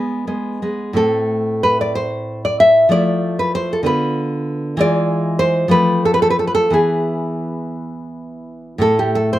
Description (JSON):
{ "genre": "romantic piece for solo classical guitar", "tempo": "56-68 BPM (dotted quarters)", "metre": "6/8", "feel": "rubato", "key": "A minor", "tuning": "A4 = 440 Hz", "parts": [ { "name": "nylon-string guitar", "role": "solo", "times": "0.0-9.4 s", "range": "A2 to E5", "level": "-15 LUFS", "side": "equal", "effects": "none" } ], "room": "little or no reverb", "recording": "recorded outdoors, with no room sound, faint mains hum", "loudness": "-15 LUFS", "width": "side -14 dB against mid", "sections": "1.0-9.4 A section", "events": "none", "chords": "0.0 E (rootless); 1.0 Am; 2.9 Fmaj7; 3.9 Bdim/D; 4.8 E7b9; 5.7 F; 6.7 E; 8.8 A5", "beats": "| 0.96 1.95 | 2.92 3.87 | 4.81 5.72 | 6.73 7.78 | 8.83" }